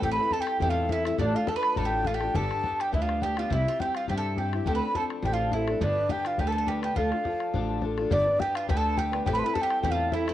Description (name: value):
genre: celtic folk, Celtic reel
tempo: 208 BPM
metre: 4/4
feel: swing 54% on 8ths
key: D dorian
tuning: A4 = 440 Hz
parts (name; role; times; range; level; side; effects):
- baroque flute; melody; 0.0-10.3 s; D5 to C6; -28 LUFS; equal; cassette tape
- bowl-back mandolin; second line; 0.0-10.3 s; D4 to B4; -34 LUFS; right 7 dB; plate reverb
- picked steel-string acoustic guitar; accompaniment; 0.0-10.3 s; G2 to B4; -32 LUFS; left 5 dB; none
- upright bass; bass; 0.0-10.3 s; G1 to G2; -30 LUFS; right 1 dB; none
- bodhran; percussion; 0.0-10.3 s; none; -33 LUFS; left 3 dB; none
room: wet small room reverb, RT60 0.5 s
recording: home recording on cassette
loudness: -24 LUFS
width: side -12 dB against mid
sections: 0.0-8.1 A section; 8.1-10.3 A section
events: none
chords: 0.0 Am7; 1.2 Dm/A; 2.3 G; 3.5 C; 4.7 Dm7; 5.8 G; 7.0 Dm; 8.1 G; 9.3 Am7